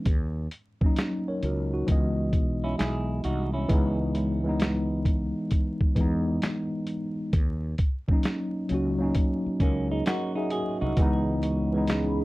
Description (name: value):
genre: lo-fi hip hop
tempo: 66 BPM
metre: 4/4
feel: swing 65% on 16ths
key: C# dorian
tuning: A4 = 440 Hz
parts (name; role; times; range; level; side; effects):
- tine electric piano; accompaniment; 0.0-12.2 s; E3 to F#5; -27 LUFS; equal; medium stereo tremolo, cassette tape
- mellow fretless electric bass; bass; 0.1-12.2 s; B1 to E2; -30 LUFS; equal; none
- lo-fi sampler-style drum kit; drums; 0.1-12.2 s; handclaps, hi-hat, kick drum, snare drum; -25 LUFS; equal; none
- semi-hollow electric guitar; second line; 2.6-4.0, 9.6-11.2 s; A#3 to G#4; -34 LUFS; right 3 dB; tape echo, plate reverb
- deep dark ambient pad; sustained chords; 11.6-12.2 s; C#4 to B5; -33 LUFS; right 2 dB; chorus, built-in reverb
room: moderate small room reverb, RT60 0.5 s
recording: vinyl crackle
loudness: -24 LUFS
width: side -20 dB against mid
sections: 0.0-3.7 A section; 3.7-12.2 A section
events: none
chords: 0.1 D#m7; 1.9 C#m7; 7.3 D#m7; 11.0 C#m7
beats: | 0.06 0.97 1.88 2.79 | 3.70 4.61 5.52 6.43 | 7.33 8.24 9.15 10.06 | 10.97 11.88